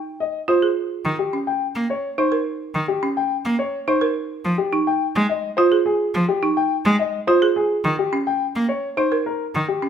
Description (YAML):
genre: classical, minimalist pattern music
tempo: 106 BPM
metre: 3/4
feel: straight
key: unclear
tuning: A4 = 442 Hz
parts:
  - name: warm concert grand piano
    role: melody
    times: 0.2-9.9 s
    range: G4 to G5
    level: -22 LUFS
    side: left 6 dB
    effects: none
  - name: folk marimba with medium hard mallets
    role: arpeggios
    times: 0.5-9.9 s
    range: Db4 to Bb4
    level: -22 LUFS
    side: right 6 dB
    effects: none
  - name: clear cello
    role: accompaniment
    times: 1.1-9.7 s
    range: Eb3 to Bb3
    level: -21 LUFS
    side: equal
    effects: none
room: light reverb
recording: none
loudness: -18 LUFS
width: side -8 dB against mid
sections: 0.0-9.9 A section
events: none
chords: 0.0 Fm; 0.9 Eb7; 4.3 Fm7; 7.7 Eb7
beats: 0.34 | 0.91 1.47 2.04 | 2.60 3.17 3.74 | 4.30 4.87 5.43 | 6.00 6.57 7.13 | 7.70 8.27 8.83 | 9.40